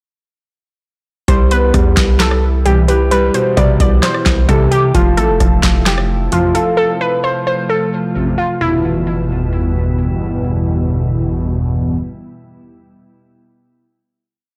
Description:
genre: hip hop, trap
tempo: 131 BPM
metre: 4/4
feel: half-time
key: C major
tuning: A4 = 440 Hz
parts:
  - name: warbly dusty pluck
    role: melody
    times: 1.3-9.9 s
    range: E4 to D5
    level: -20 LUFS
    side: equal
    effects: chorus, phaser, low-pass filter, digital delay
  - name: dark concert grand piano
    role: accompaniment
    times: 1.3-7.7 s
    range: B2 to G4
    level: -21 LUFS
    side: equal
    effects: low-pass filter
  - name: glassy FM pad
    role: sustained chords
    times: 2.2-12.0 s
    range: B2 to F4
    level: -26 LUFS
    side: equal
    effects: ensemble chorus, built-in reverb
  - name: hard-hitting 808-style bass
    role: bass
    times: 1.3-6.3 s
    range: F1 to C3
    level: -17 LUFS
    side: equal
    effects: none
  - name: booming analog drum machine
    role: drums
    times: 1.3-6.7 s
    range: handclaps, hi-hat, kick drum, rim click, snare drum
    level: -16 LUFS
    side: equal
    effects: none
  - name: mellow synth brass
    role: stabs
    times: 2.7-12.0 s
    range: G1 to E3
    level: -19 LUFS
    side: equal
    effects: chorus, phaser
room: light reverb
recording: blown-out, overdriven recording, overdrive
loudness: -14 LUFS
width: mono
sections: 1.3-8.6 hook; 8.6-12.3 final chord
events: none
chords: 1.3 Cmaj7; 4.9 Fmaj7; 8.6 G6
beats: | 1.28 1.74 2.20 2.66 | 3.11 3.57 4.03 4.49 | 4.95 5.40 5.86 6.32 | 6.78 7.24 7.69 8.15 | 8.61 9.07 9.53 9.98 | 10.44 10.90 11.36 11.82

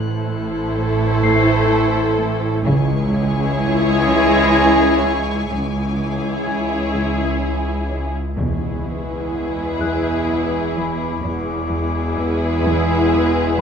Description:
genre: cinematic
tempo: 63 BPM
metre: 3/4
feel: straight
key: unclear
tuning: A4 = 439 Hz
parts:
  - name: muted symphonic violin section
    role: melody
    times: 0.0-13.6 s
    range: B4 to C#5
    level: -28 LUFS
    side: left 4 dB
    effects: none
  - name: muted studio violin section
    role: second line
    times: 0.0-13.6 s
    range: G#4 to A4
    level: -25 LUFS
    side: left 1 dB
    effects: none
  - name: muted symphonic viola section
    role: accompaniment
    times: 0.0-13.6 s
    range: E4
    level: -25 LUFS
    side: right 1 dB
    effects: none
  - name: dark French horn section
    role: sustained chords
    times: 0.0-13.6 s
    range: B3 to E4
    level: -24 LUFS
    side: left 4 dB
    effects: none
  - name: warm trombone section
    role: sustained chords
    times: 0.0-13.6 s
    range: E3 to A3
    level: -27 LUFS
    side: right 4 dB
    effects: none
  - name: muted symphonic cello section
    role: riff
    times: 0.0-13.4 s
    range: E2 to C#4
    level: -27 LUFS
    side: right 1 dB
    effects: none
  - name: muted symphonic cello section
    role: bass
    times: 0.0-13.6 s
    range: C#2 to A2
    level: -25 LUFS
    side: right 2 dB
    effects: none
  - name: muted symphonic double bass section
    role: bass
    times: 0.0-13.6 s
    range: E1 to C#2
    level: -26 LUFS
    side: right 3 dB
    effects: none
  - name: analog drone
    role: drone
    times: 0.0-13.6 s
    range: A1 to E2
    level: -28 LUFS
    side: equal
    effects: chorus
  - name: celesta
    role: texture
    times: 0.0-13.6 s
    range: B5 to C7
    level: -28 LUFS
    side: left 6 dB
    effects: none
  - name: muted studio violin section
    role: texture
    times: 0.0-13.6 s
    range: G#5 to F#6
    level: -32 LUFS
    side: left 4 dB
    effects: none
  - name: timpani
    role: percussion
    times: 8.4-9.8 s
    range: E2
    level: -26 LUFS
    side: equal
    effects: none
room: moderate scoring stage reverb, RT60 1.5 s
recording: minimal, uncompressed stereo recording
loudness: -16 LUFS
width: side -7 dB against mid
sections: 0.0-13.6 A section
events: none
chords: 0.0 Am; 2.7 C#m; 8.4 E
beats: 0.75 1.70 | 2.65 3.61 4.56 | 5.51 6.46 7.42 | 8.37 9.32 10.27 | 11.23 12.18 13.13

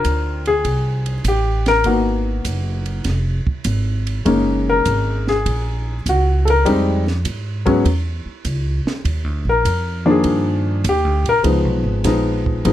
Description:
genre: jazz piano trio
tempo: 100 BPM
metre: 4/4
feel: swing 69% on 8ths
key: unclear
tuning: A4 = 439 Hz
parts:
  - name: warm baby grand piano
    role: melody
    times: 0.0-12.7 s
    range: Eb3 to G5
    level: -18 LUFS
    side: left 2 dB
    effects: none
  - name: upright bass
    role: bass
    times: 0.0-12.7 s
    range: F1 to Ab2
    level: -20 LUFS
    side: right 1 dB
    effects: none
  - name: compact cocktail drum kit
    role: drums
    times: 0.0-12.7 s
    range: hi-hat, kick drum, ride cymbal, snare drum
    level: -28 LUFS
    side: right 3 dB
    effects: none
room: light reverb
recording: none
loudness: -16 LUFS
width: side -12 dB against mid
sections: 0.0-12.7 A section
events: grand piano solo 0.0-12.7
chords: 0.0 Bb69; 1.9 Abm9; 3.1 Fm; 4.3 Gb69; 6.7 Fm9; 7.9 Dbm; 9.1 Ebmaj9; 11.4 Db9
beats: 0.05 0.65 1.25 | 1.85 2.45 3.05 3.65 | 4.25 4.86 5.46 6.05 | 6.66 7.25 7.85 8.45 | 9.05 9.65 10.25 10.85 | 11.45 12.05 12.65

